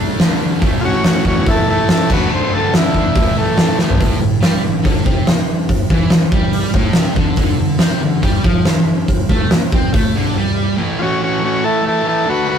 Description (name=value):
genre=garage rock duo or trio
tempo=142 BPM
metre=4/4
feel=straight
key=A mixolydian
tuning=A4 = 440 Hz
part: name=thick fuzz guitar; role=riff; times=0.0-12.6 s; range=A2 to D4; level=-18 LUFS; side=equal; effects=distortion
part: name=oversized low-tuned drum kit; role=drums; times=0.2-10.0 s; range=crash cymbal, hi-hat, kick drum, snare drum, toms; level=-14 LUFS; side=equal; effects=none
part: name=combo organ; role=melody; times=0.8-3.8, 11.0-12.6 s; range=A3 to C5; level=-17 LUFS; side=left 1 dB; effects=spring reverb
room=moderate studio reverb, RT60 0.5 s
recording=rough rehearsal-room recording, warm saturation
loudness=-13 LUFS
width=side -8 dB against mid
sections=0.0-4.0 A section; 4.0-10.8 B section; 10.8-12.6 A section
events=drum fill 3.8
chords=0.0 D5; 0.6 A; 2.1 D; 3.2 A5; 7.4 D5; 10.8 A